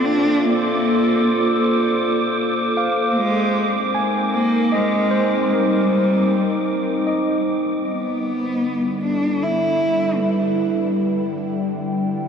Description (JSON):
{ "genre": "ambient", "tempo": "77 BPM", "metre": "3/4", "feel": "straight", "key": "unclear", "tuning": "A4 = 440 Hz", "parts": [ { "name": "dark cello", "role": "melody", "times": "0.0-11.0 s", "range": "G3 to E4", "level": "-21 LUFS", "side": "equal", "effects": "ping-pong delay" }, { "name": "warbly tape-like pad", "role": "sustained chords", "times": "0.0-12.3 s", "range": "G3 to G5", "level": "-21 LUFS", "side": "right 1 dB", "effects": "chorus, built-in reverb" }, { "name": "overdriven tine electric piano", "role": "arpeggios", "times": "0.0-8.2 s", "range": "C5 to Ab5", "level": "-26 LUFS", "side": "equal", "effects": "medium tremolo, ping-pong delay" }, { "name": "wind-like tuned noise texture", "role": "texture", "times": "0.0-7.9 s", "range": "D6", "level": "-27 LUFS", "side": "right 1 dB", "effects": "built-in reverb" }, { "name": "bowed-like drone", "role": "drone", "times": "8.4-12.3 s", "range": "D3 to G3", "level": "-29 LUFS", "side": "left 2 dB", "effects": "built-in reverb" } ], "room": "wet huge ambient reverb, RT60 7.3 s", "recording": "none", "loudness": "-17 LUFS", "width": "side -7 dB against mid", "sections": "0.0-7.8 A section; 7.8-12.3 B section", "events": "none", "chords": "0.0 Bbmaj7; 3.2 Abmaj7; 7.8 G6", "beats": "0.05 | 0.83 1.61 2.38 | 3.16 3.94 4.72 | 5.50 6.28 7.06 | 7.84 8.62 9.40 | 10.18 10.96 11.74" }